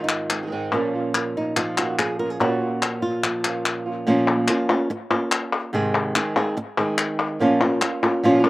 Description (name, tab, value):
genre	flamenco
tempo	144 BPM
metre	4/4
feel	straight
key	Bb minor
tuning	A4 = 442 Hz
part	flamenco guitar	melody	0.0-8.5 s	Ab2 to Bb4	-22 LUFS	right 1 dB	none
part	palmas hand claps	percussion	0.1-8.5 s	none	-24 LUFS	left 3 dB	none
part	flamenco guitar	stabs	0.3-4.1, 7.4-8.5 s	Ab2 to Ab4	-28 LUFS	right 3 dB	slapback echo
room	little or no reverb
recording	recorded outdoors, with no room sound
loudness	-20 LUFS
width	side -18 dB against mid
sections	0.0-4.1 A section; 4.1-8.5 B section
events	none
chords	0.0 Ab; 0.7 Bbm; 5.7 Ab; 7.4 Bbm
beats	0.31 | 0.73 1.14 1.56 1.98 | 2.40 2.82 3.24 3.65 | 4.07 4.49 4.90 5.32 | 5.74 6.15 6.57 6.99 | 7.40 7.82 8.23